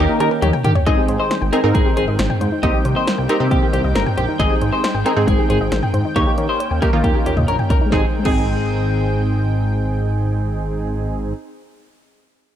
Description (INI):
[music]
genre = synth-pop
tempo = 136 BPM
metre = 4/4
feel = straight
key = Ab major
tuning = A4 = 440 Hz
[part]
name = electric guitar at the edge of break-up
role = second line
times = 0.0-9.2 s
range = G4 to Eb5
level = -23 LUFS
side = left 2 dB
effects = wide subtle chorus, tape echo
[part]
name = funky polysynth comp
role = accompaniment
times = 0.0-11.3 s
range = Bb3 to Bb4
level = -23 LUFS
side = right 2 dB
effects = chorus
[part]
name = lush unison pad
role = sustained chords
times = 0.0-11.0 s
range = Eb3 to G5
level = -26 LUFS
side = equal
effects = chorus
[part]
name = soft round pluck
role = arpeggios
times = 0.0-11.4 s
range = Ab3 to G5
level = -26 LUFS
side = left 4 dB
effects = chorus, tape echo
[part]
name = chorused synth bass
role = bass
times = 0.0-11.3 s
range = G1 to Eb3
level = -20 LUFS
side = equal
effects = none
[part]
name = punchy analog drum machine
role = drums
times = 0.2-8.4 s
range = cowbell, crash cymbal, hi-hat, kick drum, snare drum, toms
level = -20 LUFS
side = equal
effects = none
[sound]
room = light reverb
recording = dark, warm production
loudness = -15 LUFS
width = side -10 dB against mid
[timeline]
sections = 0.9-7.9 A section; 7.9-11.5 B section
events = drum fill 0.4-0.9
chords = 0.0 Eb7; 0.9 Abmaj7; 2.6 Cm7; 4.4 Abmaj7; 6.2 Eb7; 7.9 Abmaj7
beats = 0.42 | 0.86 1.31 1.75 2.19 | 2.63 3.07 3.51 3.95 | 4.39 4.83 5.28 5.72 | 6.16 6.60 7.04 7.48 | 7.92 8.36 8.81 9.25 | 9.69 10.13 10.57 11.01